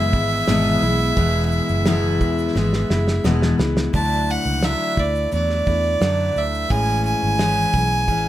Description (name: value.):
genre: acoustic pop.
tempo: 87 BPM.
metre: 4/4.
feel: straight.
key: unclear.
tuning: A4 = 440 Hz.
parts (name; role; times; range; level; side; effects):
rich violin; melody; 0.0-8.3 s; D5 to A5; -22 LUFS; right 2 dB; none.
picked steel-string acoustic guitar; accompaniment; 0.0-8.3 s; E2 to E4; -22 LUFS; left 2 dB; none.
warm studio string section; sustained chords; 0.0-3.9 s; B3 to E5; -31 LUFS; left 1 dB; none.
vintage muted fingered electric bass; bass; 0.0-8.3 s; E1 to F#2; -22 LUFS; right 1 dB; none.
cloth-damped thuddy drum kit; drums; 0.1-8.2 s; kick drum, shaker, snare drum; -23 LUFS; right 1 dB; none.
room: little or no reverb.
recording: close, detailed microphones.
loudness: -17 LUFS.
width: side -13 dB against mid.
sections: 0.0-3.9 A section; 3.9-8.3 B section.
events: drum fill 2.6-3.9.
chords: 0.0 E; 3.9 Dadd9; 6.7 Amaj7.